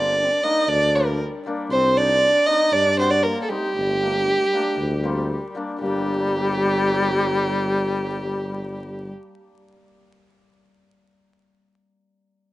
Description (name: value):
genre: klezmer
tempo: 117 BPM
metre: 4/4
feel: straight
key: G minor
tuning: A4 = 439 Hz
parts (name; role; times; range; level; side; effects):
- dark violin; melody; 0.0-9.1 s; G4 to Eb5; -21 LUFS; right 1 dB; none
- alto flute; second line; 0.0-9.1 s; G3 to Eb4; -26 LUFS; left 3 dB; none
- hammered dulcimer; accompaniment; 0.0-10.5 s; G3 to F#4; -32 LUFS; left 3 dB; none
- mellow tuba; bass; 0.0-9.1 s; G1 to G2; -26 LUFS; equal; none
room: light reverb, small room ambience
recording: rough home demo mix, vinyl crackle, nothing above 10.9 kHz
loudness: -18 LUFS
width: side -16 dB against mid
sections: 0.0-5.8 A section; 5.8-9.9 B section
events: none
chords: 0.0 Gm; 1.7 Cm; 3.8 Gm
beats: 0.18 0.69 1.20 | 1.71 2.22 2.73 3.25 | 3.76 4.27 4.78 5.29 | 5.81 6.32 6.83 7.34 | 7.86 8.37 8.88 9.40